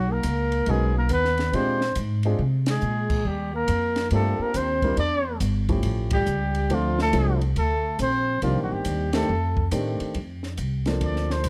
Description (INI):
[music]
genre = jazz, small-group swing and bop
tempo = 139 BPM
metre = 4/4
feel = swing 65% on 8ths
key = Bb major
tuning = A4 = 444 Hz
[part]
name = breathy trumpet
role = melody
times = 0.0-11.5 s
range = F4 to D5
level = -29 LUFS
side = equal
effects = plate reverb
[part]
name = breathy trombone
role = second line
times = 0.0-9.7 s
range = F3 to D4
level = -31 LUFS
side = equal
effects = none
[part]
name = upright bass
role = bass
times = 0.0-11.5 s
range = G1 to C3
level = -28 LUFS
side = equal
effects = none
[part]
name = compact cocktail drum kit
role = drums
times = 0.2-11.5 s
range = crash cymbal, hi-hat, kick drum, ride cymbal, snare drum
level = -34 LUFS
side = equal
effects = none
[part]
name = warm upright piano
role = accompaniment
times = 0.7-11.4 s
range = Eb3 to A#4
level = -31 LUFS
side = equal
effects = none
[sound]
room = light reverb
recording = close, detailed microphones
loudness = -24 LUFS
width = mono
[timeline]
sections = 0.0-10.2 A section; 10.2-11.5 B section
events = drum fill 2.4-2.8; band accent 2.6, 6.1, 9.1; trumpet solo 10.2-11.5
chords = 0.0 Bmaj9; 1.5 Bb13; 3.3 Ebmaj13; 5.0 Fmaj13; 5.8 A7b13; 6.7 Dm7; 8.4 Cm9; 9.3 F13; 10.2 Bbmaj9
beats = 0.24 0.67 1.10 | 1.53 1.96 2.39 2.82 | 3.25 3.68 4.11 4.54 | 4.97 5.41 5.84 6.27 | 6.70 7.13 7.56 7.99 | 8.43 8.86 9.29 9.72 | 10.15 10.58 11.02 11.45